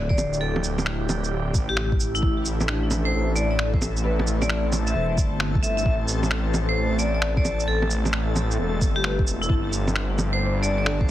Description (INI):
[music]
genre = future garage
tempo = 132 BPM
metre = 4/4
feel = swing 65% on 16ths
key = A minor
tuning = A4 = 437 Hz
[part]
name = felt-muted upright piano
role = accompaniment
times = 0.0-11.1 s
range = D4 to E5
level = -36 LUFS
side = right 1 dB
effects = none
[part]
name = airy breathy pad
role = sustained chords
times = 0.0-11.1 s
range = D3 to A4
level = -30 LUFS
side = equal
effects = chorus, phaser, vintage 12-bit sampler grit, sidechain pumping
[part]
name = swelling detuned saw bass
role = bass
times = 0.0-11.1 s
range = D1 to A1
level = -25 LUFS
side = equal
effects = sidechain pumping
[part]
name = vibraphone with hard mallets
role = melody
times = 0.1-10.8 s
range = E4 to E5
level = -29 LUFS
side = left 1 dB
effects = tape echo
[part]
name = electronic kick drum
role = drums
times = 0.1-11.1 s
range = none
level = -23 LUFS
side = equal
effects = overdrive
[part]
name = electronic bongos, shaker and finger snaps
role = drums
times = 0.2-11.0 s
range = none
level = -27 LUFS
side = right 2 dB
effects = overdrive
[part]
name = backwards swelling texture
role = texture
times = 3.3-11.1 s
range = A3 to A4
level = -36 LUFS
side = equal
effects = built-in reverb
[sound]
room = little or no reverb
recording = heavily compressed radio sound, multiband compression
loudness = -21 LUFS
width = side -13 dB against mid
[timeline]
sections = 0.0-2.2 A section; 2.2-11.1 B section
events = none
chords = 0.0 Dsus4; 2.2 Am9; 9.5 Gsus4